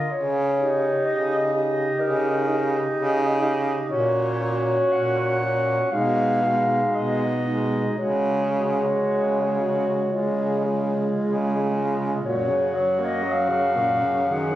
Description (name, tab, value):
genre	classical, lyrical piece for single-reed quartet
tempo	55-64 BPM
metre	4/4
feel	rubato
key	F# major from 3.9 s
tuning	A4 = 440 Hz
part	mellow clarinet	melody	0.0-14.6 s	Bb4 to F#5	-24 LUFS	left 2 dB	none
part	clear alto saxophone	second line	0.0-14.6 s	D#4 to G#4	-29 LUFS	right 4 dB	none
part	mellow tenor saxophone	accompaniment	0.0-14.6 s	A#2 to Eb4	-26 LUFS	equal	none
part	warm baritone saxophone	bass	0.1-14.6 s	F#2 to Db3	-26 LUFS	right 1 dB	none
room	moderate recital hall reverb, RT60 1.7 s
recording	recorded on a phone in the room, studio reverb, compression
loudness	-20 LUFS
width	side -13 dB against mid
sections	0.0-12.3 A section; 12.3-14.6 B section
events	none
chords	0.1 Eb7/Db; 3.9 F#/A#; 5.9 G#m/B; 8.0 C#sus4; 12.3 F#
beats	| 0.10 1.05 1.99 2.94 | 3.89 4.93 5.92 6.93 | 7.98 9.06 10.13 11.19 | 12.26 13.29 14.31